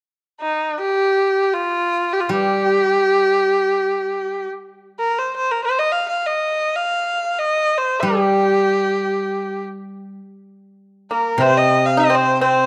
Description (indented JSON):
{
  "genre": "chinese traditional, Chinese chamber ensemble",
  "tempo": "free time",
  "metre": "none",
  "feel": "none",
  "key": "G jue mode",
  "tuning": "A4 = 440 Hz",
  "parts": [
    { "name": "clear erhu", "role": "melody", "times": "0.4-12.7 s", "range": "Eb4 to F5", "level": "-20 LUFS", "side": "equal", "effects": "none" },
    { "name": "steel-string zither", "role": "accompaniment", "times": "2.3-4.5, 8.0-12.7 s", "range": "C3 to G3", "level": "-24 LUFS", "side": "equal", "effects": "none" },
    { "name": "pipa", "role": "second line", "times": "11.1-12.7 s", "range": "Bb3 to Eb4", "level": "-20 LUFS", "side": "equal", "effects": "none" }
  ],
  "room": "moderate recital hall reverb, RT60 1.5 s",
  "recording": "dark, warm production",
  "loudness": "-19 LUFS",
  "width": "mono",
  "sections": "0.0-11.4 A section; 11.4-12.7 B section",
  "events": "none",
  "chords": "none",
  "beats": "free time"
}